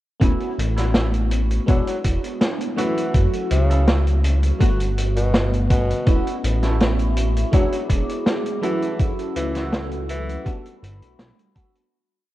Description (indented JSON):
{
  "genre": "vaporwave",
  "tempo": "82 BPM",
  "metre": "4/4",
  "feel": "straight",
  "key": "D major",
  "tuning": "A4 = 441 Hz",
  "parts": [
    { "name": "FM electric piano with soft pad layer", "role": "accompaniment", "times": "0.2-11.9 s", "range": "D3 to F#4", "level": "-26 LUFS", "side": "equal", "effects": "phaser, wide subtle chorus, analog delay" },
    { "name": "clean electric guitar", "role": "riff", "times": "0.2-11.8 s", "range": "F#3 to B4", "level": "-35 LUFS", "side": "right 3 dB", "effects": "analog chorus, vintage 12-bit sampler grit, analog delay" },
    { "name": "chorused synth bass", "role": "bass", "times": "0.2-11.3 s", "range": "D1 to C#2", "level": "-21 LUFS", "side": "equal", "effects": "none" },
    { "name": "electronic kick drum", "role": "drums", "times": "0.2-11.7 s", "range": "none", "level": "-19 LUFS", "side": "equal", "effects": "overdrive" },
    { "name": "vintage drum kit", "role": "drums", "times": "0.2-11.9 s", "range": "hi-hat, snare drum", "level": "-25 LUFS", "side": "equal", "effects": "none" },
    { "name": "clear tenor saxophone", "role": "melody", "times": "1.7-10.5 s", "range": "B2 to F#3", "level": "-28 LUFS", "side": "equal", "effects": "tape echo" },
    { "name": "warbly tape-like pad", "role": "sustained chords", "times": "6.5-11.9 s", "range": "F#4 to E6", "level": "-33 LUFS", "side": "right 3 dB", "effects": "chorus, built-in reverb" }
  ],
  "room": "light reverb, small room ambience",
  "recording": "worn, warbling old tape, cassette tape, warbly pitch drift",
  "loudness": "-18 LUFS",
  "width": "side -15 dB against mid",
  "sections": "0.2-11.9 groove",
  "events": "fade-out 8.0-11.9",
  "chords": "0.2 Dmaj13 (rootless); 1.7 E7; 2.8 F#m7; 4.6 Gmaj9; 6.1 Dmaj13 (rootless); 7.5 E7; 8.6 F#m7; 10.5 Gmaj9",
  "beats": "| 0.22 0.95 1.68 2.41 | 3.14 3.88 4.61 5.34 | 6.07 6.80 7.53 8.27 | 9.00 9.73 10.46 11.19"
}